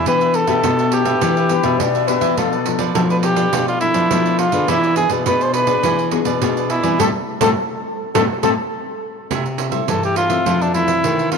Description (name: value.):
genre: samba and choro.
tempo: 104 BPM.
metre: 4/4.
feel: straight.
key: unclear.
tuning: A4 = 445 Hz.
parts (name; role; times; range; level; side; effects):
mellow cor anglais; melody; 0.0-11.4 s; D4 to C5; -19 LUFS; equal; none.
cavaquinho; accompaniment; 0.0-11.4 s; D4 to E5; -26 LUFS; right 10 dB; none.
nylon-string guitar; accompaniment; 0.0-11.4 s; F2 to G#4; -22 LUFS; left 10 dB; none.
nylon-string guitar; bass; 0.0-11.4 s; A2 to F3; -23 LUFS; equal; none.
pandeiro; percussion; 0.1-11.4 s; none; -24 LUFS; right 11 dB; none.
concert flute; second line; 1.5-2.8, 7.0-8.5 s; A4 to D5; -22 LUFS; left 9 dB; none.
room: moderate plate reverb, RT60 3.0 s.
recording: 1960s-style stereo with parts hard left and right.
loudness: -15 LUFS.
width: side -5 dB against mid.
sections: 0.0-9.3 A section; 9.3-11.4 B section.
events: band accent 7.0-9.3.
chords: 0.1 Em7; 2.4 Bm7b5; 4.7 E7; 7.0 Am7; 9.3 C6; 10.5 Fmaj7.